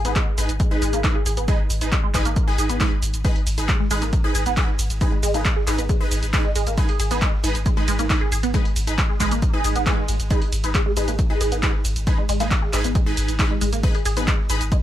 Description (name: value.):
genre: driving peak-time techno.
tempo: 136 BPM.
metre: 4/4.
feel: straight.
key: G# minor.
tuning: A4 = 440 Hz.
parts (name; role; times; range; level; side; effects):
resonant blip pluck; riff; 0.0-14.8 s; G#3 to G#4; -27 LUFS; equal; phaser, analog chorus, sidechain pumping, dub echo.
rave stab; stabs; 0.0-14.6 s; D#4 to B4; -28 LUFS; right 1 dB; chorus, built-in reverb, phaser, sidechain pumping, tape echo.
warm sub bass; bass; 0.0-14.7 s; G#1; -25 LUFS; equal; tube saturation, sidechain pumping, low-pass filter.
punchy analog drum machine; drums; 0.0-14.8 s; handclaps, hi-hat, ride cymbal, shaker; -27 LUFS; equal; none.
electronic kick drum; drums; 0.2-14.8 s; none; -21 LUFS; equal; none.
swell; sound effects; 9.6-10.3 s; none; -31 LUFS; right 4 dB; none.
room: little or no reverb.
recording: none.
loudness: -18 LUFS.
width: side -12 dB against mid.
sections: 0.0-14.8 A section.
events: swell 9.6-10.3.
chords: 0.0 G#m.